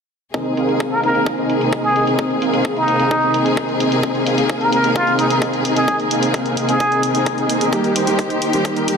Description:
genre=EDM, festival progressive house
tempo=130 BPM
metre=4/4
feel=straight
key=Ab major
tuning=A4 = 441 Hz
part: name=rich studio string section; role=sustained chords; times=0.3-9.0 s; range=C3 to Ab4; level=-23 LUFS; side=left 2 dB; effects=sidechain pumping
part: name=dense compressed supersaw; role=riff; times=0.3-9.0 s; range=C4 to F5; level=-19 LUFS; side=equal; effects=sidechain pumping, low-pass filter, ping-pong delay
part: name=electronic hi-hat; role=drums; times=0.3-9.0 s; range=none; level=-27 LUFS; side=equal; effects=low-pass filter on hats, studio reverb
part: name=electronic kick drum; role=drums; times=0.3-8.7 s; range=none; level=-25 LUFS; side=equal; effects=high-pass filter on kick, studio reverb
part: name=trumpet with plunger mute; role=melody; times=0.9-7.0 s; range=Eb4 to Bb4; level=-20 LUFS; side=equal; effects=ping-pong delay
part: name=dark grand piano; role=accompaniment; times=7.7-9.0 s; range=Eb3 to G4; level=-20 LUFS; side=right 3 dB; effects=sidechain pumping, ping-pong delay
room=moderate lush hall reverb, RT60 2.4 s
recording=dense, heavily limited modern master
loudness=-15 LUFS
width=side -6 dB against mid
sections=0.3-9.0 A section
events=none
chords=0.3 Abadd9; 7.7 Eb

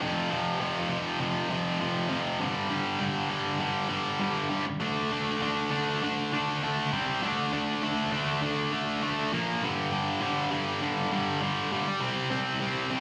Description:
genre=punk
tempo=200 BPM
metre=4/4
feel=straight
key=unclear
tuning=A4 = 437 Hz
part: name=tight distorted guitar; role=solo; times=0.0-13.0 s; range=F2 to D4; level=-29 LUFS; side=equal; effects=distortion, slapback echo, tape echo
room=light reverb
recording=live gig heard through the venue's PA, club reverb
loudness=-29 LUFS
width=mono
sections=0.0-9.6 A section; 9.6-13.0 B section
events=half time 0.0-9.6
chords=0.0 F5; 2.4 G5; 4.7 N.C.; 4.8 D5; 6.9 C5; 7.2 D5; 9.3 Bb5; 9.6 G5; 11.9 C5

